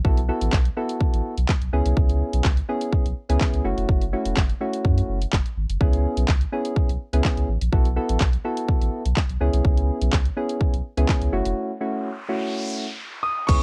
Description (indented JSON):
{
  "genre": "dance-pop",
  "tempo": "125 BPM",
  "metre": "4/4",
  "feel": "straight",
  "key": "C# minor",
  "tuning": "A4 = 440 Hz",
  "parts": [
    { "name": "soft electric-piano-like synth keys", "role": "accompaniment", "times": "0.0-13.6 s", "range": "A3 to B4", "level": "-29 LUFS", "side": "equal", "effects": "chorus, sidechain pumping" },
    { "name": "warm sub bass", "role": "bass", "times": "0.0-13.6 s", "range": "E1 to F#2", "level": "-25 LUFS", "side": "equal", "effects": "sidechain pumping" },
    { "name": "pop drum kit", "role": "drums", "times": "0.0-13.6 s", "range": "crash cymbal, handclaps, hi-hat, kick drum, shaker, snare drum", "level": "-24 LUFS", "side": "equal", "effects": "none" },
    { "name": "noise sweep", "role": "sound effects", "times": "11.9-13.5 s", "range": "none", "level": "-36 LUFS", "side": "equal", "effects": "none" },
    { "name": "clear grand piano", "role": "melody", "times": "13.2-13.6 s", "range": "C#6 to D#6", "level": "-25 LUFS", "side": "equal", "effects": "none" }
  ],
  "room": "little or no reverb",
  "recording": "worn, warbling old tape, cassette tape, warbly pitch drift",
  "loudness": "-23 LUFS",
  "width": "mono",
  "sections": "0.0-13.5 A section",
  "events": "break 11.6-13.5; noise sweep 11.9-13.5",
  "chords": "0.0 B7sus4; 1.7 C#m7; 3.6 F#m7; 5.8 C#m7; 7.7 B7sus4; 9.4 C#m7; 11.3 F#m7"
}